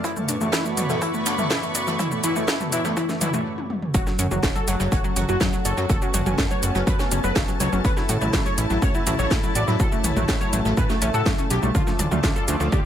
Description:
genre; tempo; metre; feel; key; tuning
melodic techno; 123 BPM; 4/4; straight; F# minor; A4 = 440 Hz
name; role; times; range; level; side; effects
wide unison lead; melody; 0.0-12.8 s; F#3 to D5; -26 LUFS; equal; wide subtle chorus, sidechain pumping, dub echo
lush unison pad; sustained chords; 0.0-12.9 s; A3 to D5; -32 LUFS; equal; chorus, sidechain pumping
analog pluck; arpeggios; 0.0-12.8 s; E3 to F#5; -30 LUFS; left 1 dB; chorus, sidechain pumping, digital delay
fat analog bass; bass; 0.0-12.8 s; D1 to A2; -26 LUFS; equal; sidechain pumping, high-pass filter
analog drone; drone; 0.0-12.9 s; F#2 to C#3; -37 LUFS; equal; none
electronic kick drum; drums; 0.0-12.8 s; none; -23 LUFS; equal; overdrive, high-pass filter on kick
jazz brush drum kit; drums; 0.0-12.8 s; hi-hat, snare drum; -34 LUFS; right 2 dB; high-pass filter on hats, high-pass filter on snare, high-pass filter on room
techno drum kit; drums; 0.0-12.8 s; hi-hat, shaker, snare drum, toms; -27 LUFS; equal; overdrive, sidechain pumping on toms, sidechain pumping on perc, sidechain pumping on hats
dark studio string section; texture; 0.0-12.9 s; E4 to C#6; -33 LUFS; left 2 dB; sidechain pumping
room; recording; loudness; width
light reverb, digital ambience; none; -20 LUFS; side -10 dB against mid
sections
0.0-3.9 A section; 3.9-12.9 B section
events
build-up 0.0-3.9; filter sweep on synth arpeggio sound 0.0-3.9; filter sweep on analog synth lead 0.0-3.9; stop 3.5-3.9; drum fill 3.6-3.9; drop 3.9-12.9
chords
0.0 Bmadd9; 3.9 F#m; 7.8 A; 11.7 Dm

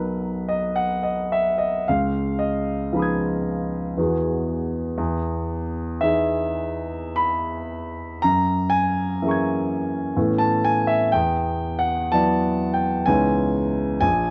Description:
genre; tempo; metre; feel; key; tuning
classical, impressionist solo piano; 49-63 BPM; 3/4; rubato; unclear; A4 = 440 Hz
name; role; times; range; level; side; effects
warm grand piano; solo; 0.0-14.3 s; A#1 to G#6; -23 LUFS; equal; none
room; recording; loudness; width
light reverb; dark, warm production; -23 LUFS; mono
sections
0.0-14.3 A section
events
none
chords
0.0 Bmaj7; 1.9 C#9; 4.0 Emaj9; 5.0 Emaj7; 8.2 F#9; 10.2 Aadd9; 11.1 Esus2; 13.1 C#m9

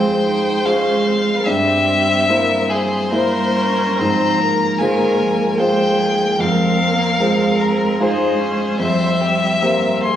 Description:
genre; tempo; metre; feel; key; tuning
classical, slow romantic movement for piano quintet; 74 BPM; 3/4; rubato; F minor; A4 = 440 Hz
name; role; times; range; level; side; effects
warm violin; melody; 0.0-10.2 s; Ab4 to C6; -19 LUFS; left 3 dB; none
rich cello; second line; 0.0-10.2 s; Eb3 to Bb3; -24 LUFS; right 6 dB; none
rich violin; second line; 0.0-10.2 s; G4 to C5; -24 LUFS; left 2 dB; none
clear baby grand piano; accompaniment; 0.0-10.2 s; F2 to C5; -19 LUFS; equal; none
rich viola; accompaniment; 0.0-10.2 s; Bb3 to Eb4; -26 LUFS; right 3 dB; none
room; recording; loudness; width
wet recital hall reverb, RT60 1.3 s; recorded on a phone in the room, club reverb, compression; -14 LUFS; side -10 dB against mid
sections
0.0-10.2 A section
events
none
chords
0.0 Fm; 1.5 C7/G; 4.0 Fm/Ab; 6.4 Fm; 8.8 C7/F

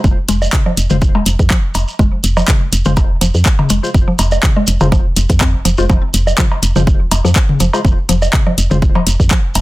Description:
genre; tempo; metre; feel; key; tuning
minimal techno; 123 BPM; 4/4; swing 54% on 16ths; F minor; A4 = 440 Hz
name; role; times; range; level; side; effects
woody FM bass; bass; 0.0-9.6 s; Eb1 to F2; -14 LUFS; equal; sidechain pumping
electronic kick drum; drums; 0.0-9.4 s; none; -12 LUFS; equal; overdrive
shekere; percussion; 0.0-9.6 s; none; -24 LUFS; right 2 dB; none
mallet-like synth pluck; riff; 0.3-9.4 s; F3 to F4; -20 LUFS; left 1 dB; chorus, vintage 12-bit sampler grit, sidechain pumping, digital delay
house drum kit; drums; 0.3-9.6 s; handclaps, hi-hat; -17 LUFS; left 1 dB; overdrive
electronic woodblock, toms and cowbell; percussion; 0.4-9.6 s; none; -19 LUFS; left 1 dB; none
percussive organ stab; stabs; 0.9-8.8 s; Ab3 to C5; -23 LUFS; left 2 dB; chorus, digital delay
room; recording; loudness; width
little or no reverb; dense, heavily limited modern master; -11 LUFS; side -18 dB against mid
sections
0.0-9.6 A section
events
none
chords
0.0 Fm

